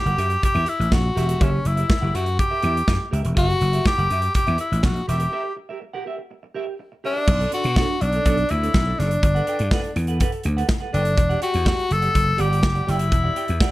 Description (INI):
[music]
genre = disco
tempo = 123 BPM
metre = 4/4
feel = straight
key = unclear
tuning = A4 = 440 Hz
[part]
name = edgy tenor saxophone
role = melody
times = 0.0-13.7 s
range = C#4 to A4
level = -23 LUFS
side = left 1 dB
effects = none
[part]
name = clean electric guitar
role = accompaniment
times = 0.1-13.7 s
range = D4 to G5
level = -30 LUFS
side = right 5 dB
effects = lush chorus
[part]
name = vintage slap bass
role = bass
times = 0.1-13.6 s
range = E1 to B2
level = -22 LUFS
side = equal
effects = none
[part]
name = modern studio drum kit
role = drums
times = 0.1-13.7 s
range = crash cymbal, hi-hat, kick drum, snare drum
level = -22 LUFS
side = equal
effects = none
[sound]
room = light reverb, studio ambience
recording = dark, warm production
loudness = -18 LUFS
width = side -17 dB against mid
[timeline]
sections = 0.0-7.3 A section; 7.3-13.7 B section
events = break 5.3-7.3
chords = 0.0 F#7b9; 7.3 Bm9; 9.2 Gmaj9; 11.2 Em9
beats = 0.43 0.92 | 1.41 1.90 2.39 2.88 | 3.37 3.86 4.35 4.84 | 5.33 5.81 6.30 6.79 | 7.28 7.77 8.25 8.74 | 9.23 9.71 10.20 10.69 | 11.17 11.66 12.15 12.63 | 13.12 13.61